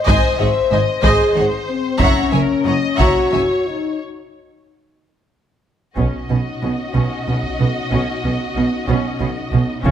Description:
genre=cinematic, epic orchestral film score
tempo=62 BPM (dotted quarters)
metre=6/8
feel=straight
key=unclear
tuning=A4 = 440 Hz
part: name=warm symphonic violin section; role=melody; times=0.0-9.9 s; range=A#4 to E5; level=-27 LUFS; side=left 3 dB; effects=none
part: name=mellow French horn section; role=sustained chords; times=0.0-9.9 s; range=B#3 to B#4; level=-21 LUFS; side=left 4 dB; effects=none
part: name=warm symphonic violin section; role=second line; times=0.1-9.9 s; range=E4 to A#5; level=-26 LUFS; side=left 3 dB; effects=none
part: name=rich symphonic viola section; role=accompaniment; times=0.1-9.9 s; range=C#4 to E5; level=-24 LUFS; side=equal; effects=none
part: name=clear symphonic double bass section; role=bass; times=0.1-9.9 s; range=F#1 to C#2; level=-21 LUFS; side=right 3 dB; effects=none
part: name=rich symphonic cello section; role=bass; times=0.1-9.9 s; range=F#2 to C#3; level=-23 LUFS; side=right 3 dB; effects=none
part: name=taiko ensemble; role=drums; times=0.1-9.9 s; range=none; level=-20 LUFS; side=equal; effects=none
room=moderate scoring stage reverb, RT60 1.5 s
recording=close, detailed microphones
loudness=-15 LUFS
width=side -9 dB against mid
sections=0.0-6.0 A section; 6.0-9.9 B section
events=break 4.0-6.0; drum fill 5.0-6.0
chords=0.0 G#; 2.0 F#7; 4.0 N.C.; 6.0 Badd9

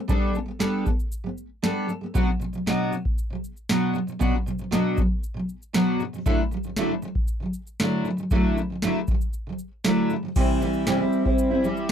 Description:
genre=acoustic pop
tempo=117 BPM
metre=4/4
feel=straight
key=unclear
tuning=A4 = 440 Hz
part: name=fingerpicked steel-string acoustic guitar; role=accompaniment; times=0.0-11.9 s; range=B2 to A4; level=-24 LUFS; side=equal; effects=double-tracked left and right
part: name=booming analog drum machine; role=drums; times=0.1-11.9 s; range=crash cymbal, kick drum, shaker, snare drum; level=-25 LUFS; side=equal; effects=overdrive
room=little or no reverb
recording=dry, close 1970s-style studio recording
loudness=-22 LUFS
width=side -8 dB against mid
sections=0.0-10.4 A section; 10.4-11.9 B section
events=none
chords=0.0 Gadd9; 2.1 Bm; 6.3 Dadd9; 10.4 C

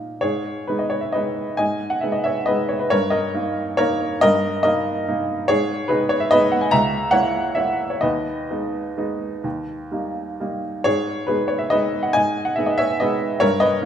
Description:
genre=classical, piano waltz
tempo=115-155 BPM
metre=3/4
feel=rubato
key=G# minor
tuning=A4 = 441 Hz
part: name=warm upright piano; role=solo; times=0.0-13.9 s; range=C#2 to A#5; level=-19 LUFS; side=equal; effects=none
room=moderate recital hall reverb, RT60 1.8 s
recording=none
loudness=-19 LUFS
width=side -9 dB against mid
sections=0.2-13.9 A section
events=none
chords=0.2 G#m; 2.9 D#/G; 5.5 G#m; 6.7 A#dim/C#; 8.0 G#m/D#; 9.4 D#; 10.9 G#m

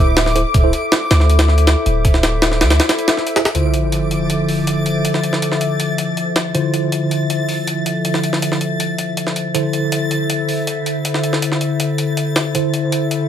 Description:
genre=drum and bass, jungle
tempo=160 BPM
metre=4/4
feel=straight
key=D minor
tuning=A4 = 439 Hz
part: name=warbly tape-like pad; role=sustained chords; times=0.0-13.3 s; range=D3 to E5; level=-20 LUFS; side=left 3 dB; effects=chorus, built-in reverb
part: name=long sustained 808-style bass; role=bass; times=0.0-2.8 s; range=D1 to D2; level=-15 LUFS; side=equal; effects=none
part: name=backwards swelling texture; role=texture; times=0.0-13.3 s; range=D6 to A6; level=-26 LUFS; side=left 1 dB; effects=built-in reverb
part: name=jungle sampler-style drum kit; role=drums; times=0.2-13.2 s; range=hi-hat, kick drum, snare drum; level=-18 LUFS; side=equal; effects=high-pass filter on hats, high-pass filter on kick, high-pass filter on snare
part: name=mellow tine electric piano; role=stabs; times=0.4-0.7, 3.4-13.3 s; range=D3 to C5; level=-21 LUFS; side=right 2 dB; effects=medium stereo tremolo, vintage 12-bit sampler grit, low-pass filter, dub echo
part: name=sub drop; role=sound effects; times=3.5-5.0 s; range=none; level=-22 LUFS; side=equal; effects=none
room=light reverb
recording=none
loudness=-14 LUFS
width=side -9 dB against mid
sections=0.0-3.5 A section; 3.5-13.3 B section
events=impact 3.5-5.0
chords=0.0 Am/D; 3.5 Dm7; 9.5 Am/D

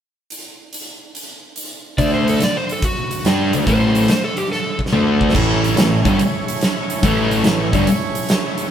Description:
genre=blues rock power trio and southern rock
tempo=143 BPM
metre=4/4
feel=swing 67% on 8ths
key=A mixolydian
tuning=A4 = 439 Hz
part: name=huge arena drum kit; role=drums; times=0.3-8.6 s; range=crash cymbal, hi-hat, kick drum, snare drum, toms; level=-21 LUFS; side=right 1 dB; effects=none
part: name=overdriven slide guitar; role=melody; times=2.0-4.8 s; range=F#4 to D5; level=-23 LUFS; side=equal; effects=none
part: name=fuzz guitar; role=riff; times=2.0-7.9 s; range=G2 to G4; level=-16 LUFS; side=equal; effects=distortion
part: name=fuzz picked electric bass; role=bass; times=2.0-7.9 s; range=G1 to G2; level=-22 LUFS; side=left 1 dB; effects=overdrive
part: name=overdriven tonewheel organ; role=sustained chords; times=5.3-8.7 s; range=A3 to C#5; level=-25 LUFS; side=right 4 dB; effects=slow rotary speaker
room=moderate stone room reverb, RT60 1.3 s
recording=band playing live in one room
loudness=-15 LUFS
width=side -9 dB against mid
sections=0.3-2.0 A section; 2.0-5.3 B section; 5.3-8.7 C section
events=drum fill 4.5-5.3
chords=0.3 N.C.; 2.0 D; 3.7 A5; 4.9 D5; 5.3 A

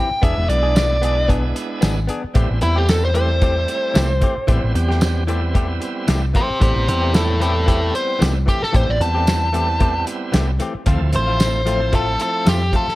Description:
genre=straight-eighth soul blues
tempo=113 BPM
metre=4/4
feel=swing 56% on 16ths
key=A minor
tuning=A4 = 444 Hz
part: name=biting overdriven guitar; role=melody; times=0.0-13.0 s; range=E4 to A5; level=-20 LUFS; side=equal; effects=none
part: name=direct-recorded clean electric guitar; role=stabs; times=0.0-12.9 s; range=E3 to G#4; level=-27 LUFS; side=left 4 dB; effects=analog delay
part: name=hollow-body short-scale fingered electric bass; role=bass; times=0.1-12.9 s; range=E1 to F2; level=-20 LUFS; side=equal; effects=none
part: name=bright tonewheel organ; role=accompaniment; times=0.2-12.6 s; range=F3 to G4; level=-27 LUFS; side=right 4 dB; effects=overdrive, fast rotary speaker
part: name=warm soul drum kit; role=drums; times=0.2-12.9 s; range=hi-hat, kick drum, snare drum, tambourine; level=-20 LUFS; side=equal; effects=none
room=small room reverb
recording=none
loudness=-16 LUFS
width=side -18 dB against mid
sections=0.0-2.4 A section; 2.4-13.0 A section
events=overdriven electric guitar solo 0.0-2.4, 2.4-13.0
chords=0.2 E7; 2.4 Am7; 10.9 Dm7

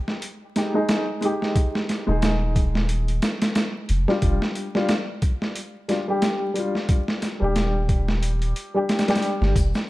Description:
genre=trip hop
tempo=90 BPM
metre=4/4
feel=swing 58% on 16ths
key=unclear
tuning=A4 = 441 Hz
part: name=boom bap sampler-style drum kit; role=drums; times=0.1-9.9 s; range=hi-hat, kick drum, snare drum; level=-24 LUFS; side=equal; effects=overdrive, studio reverb
part: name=dark upright piano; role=accompaniment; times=0.6-9.5 s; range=G3 to Ab4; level=-25 LUFS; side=left 1 dB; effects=tremolo, low-pass filter, tape echo
part: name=soft dub sub bass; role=bass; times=2.1-9.7 s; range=Eb1 to G1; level=-22 LUFS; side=equal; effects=none
part: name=tube shaker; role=percussion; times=9.6-9.9 s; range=none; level=-40 LUFS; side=left 3 dB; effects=none
room=light reverb, small room reverb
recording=dark, warm production, vinyl crackle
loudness=-20 LUFS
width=side -18 dB against mid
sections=0.0-9.9 A section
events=none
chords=0.0 Fm7 (rootless); 4.2 Ebmaj7/F

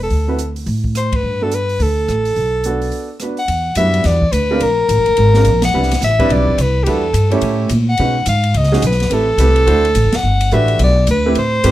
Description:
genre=jazz, small-group swing and bop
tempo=213 BPM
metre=4/4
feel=swing 62% on 8ths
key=G major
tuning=A4 = 440 Hz
part: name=mellow soprano saxophone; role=melody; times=0.0-11.7 s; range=G4 to F#5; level=-17 LUFS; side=left 1 dB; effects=none
part: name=upright bass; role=bass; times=0.0-11.7 s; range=D1 to B2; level=-16 LUFS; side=equal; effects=none
part: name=open jazz drum kit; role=drums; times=0.1-11.7 s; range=hi-hat, kick drum, ride cymbal, rim click, snare drum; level=-25 LUFS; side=equal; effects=none
part: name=warm grand piano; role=accompaniment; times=0.3-11.7 s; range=G3 to C#5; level=-20 LUFS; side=right 3 dB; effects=none
room=light reverb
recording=none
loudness=-12 LUFS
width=side -14 dB against mid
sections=0.0-3.5 A section; 3.5-11.7 B section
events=band accent 1.1, 5.6, 10.1; break 2.9-3.5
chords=0.1 D5; 1.2 Gmaj9; 3.5 Em7; 4.6 Bb7(no3); 5.7 Cmaj7; 6.9 Em7; 7.4 A7; 8.0 B69; 9.1 Am7; 9.7 D9; 10.2 Gmaj9

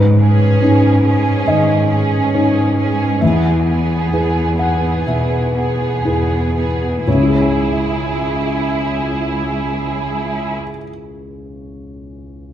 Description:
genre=cinematic, emotional film score for orchestra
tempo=58-72 BPM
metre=4/4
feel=rubato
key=C# minor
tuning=A4 = 440 Hz
part: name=felt-muted upright piano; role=accompaniment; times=0.0-12.5 s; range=C#2 to G#5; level=-16 LUFS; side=left 1 dB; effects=none
part: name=clear studio cello section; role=bass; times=0.0-10.5 s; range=C#2 to G#2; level=-20 LUFS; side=right 1 dB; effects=none
part: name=rich studio violin section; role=second line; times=0.2-10.5 s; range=B3 to G#4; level=-21 LUFS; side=right 4 dB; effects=none
room=moderate recital hall reverb, RT60 1.5 s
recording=dark, warm production, lossy compression artefacts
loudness=-14 LUFS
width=side -11 dB against mid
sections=0.0-7.1 A section; 7.1-11.1 B section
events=slowing down 0.0-7.1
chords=0.0 G#sus4; 3.2 E; 7.1 C#m

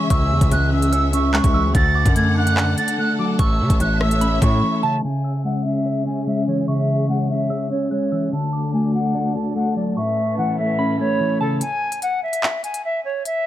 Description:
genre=hip hop, drill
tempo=146 BPM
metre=4/4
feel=half-time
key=C# phrygian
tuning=A4 = 439 Hz
part: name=silver concert flute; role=melody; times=0.0-13.5 s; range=A4 to A6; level=-23 LUFS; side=right 1 dB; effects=low-pass filter, tape echo
part: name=soft synth bell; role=second line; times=0.0-11.6 s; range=A5 to F#6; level=-30 LUFS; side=right 4 dB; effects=chorus, phaser, tape echo
part: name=mellow electric guitar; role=accompaniment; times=0.0-11.6 s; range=A2 to D5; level=-21 LUFS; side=left 1 dB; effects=low-pass filter
part: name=dark symphonic string section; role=sustained chords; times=0.0-11.6 s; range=D2 to F#5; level=-27 LUFS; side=equal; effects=none
part: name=distorted 808-style bass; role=bass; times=0.1-4.6 s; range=A1 to C#3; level=-20 LUFS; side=equal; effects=distortion
part: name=drill drum kit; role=drums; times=0.1-4.5, 11.6-13.3 s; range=handclaps, hi-hat, kick drum, rim click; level=-20 LUFS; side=equal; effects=none
room=little or no reverb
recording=vinyl crackle, low-pass filter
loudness=-17 LUFS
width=side -13 dB against mid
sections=0.0-5.0 A section; 5.0-11.6 B section; 11.6-13.5 C section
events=break 4.6-5.0, 11.6-13.5; filter sweep 5.0-11.6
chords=0.0 C#m; 1.7 D; 3.4 A; 5.0 C#m; 8.3 D; 10.0 A; 11.6 N.C.

